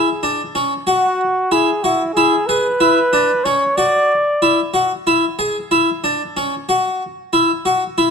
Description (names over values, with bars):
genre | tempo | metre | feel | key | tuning
contemporary instrumental, contemporary | 186 BPM (eighths) | 9/8 | straight | E mixolydian | A4 = 441 Hz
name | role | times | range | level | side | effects
warm flugelhorn | melody | 0.0-4.7 s | E4 to D5 | -16 LUFS | right 1 dB | none
harpsichord | arpeggios | 0.0-8.1 s | C#4 to G#4 | -16 LUFS | left 1 dB | none
room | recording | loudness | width
light reverb | close, detailed microphones | -14 LUFS | side -6 dB against mid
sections
0.0-8.1 A section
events
none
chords
0.0 E7(no3)